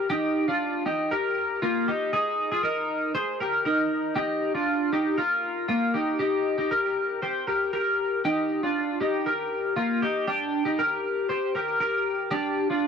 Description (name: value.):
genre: indie pop.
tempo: 118 BPM.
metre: 4/4.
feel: straight.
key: Eb major.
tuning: A4 = 440 Hz.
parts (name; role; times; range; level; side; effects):
twelve-string electric guitar; solo; 0.0-12.9 s; Bb3 to C5; -23 LUFS; equal; analog chorus.
room: little or no reverb.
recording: dry, close 1970s-style studio recording.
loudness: -24 LUFS.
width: side -6 dB against mid.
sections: 0.0-6.2 A section; 6.2-12.9 B section.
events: none.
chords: 0.0 Ebadd9; 2.1 Abadd9/Eb; 4.2 Ebsus2; 6.2 Eb; 10.3 Gm.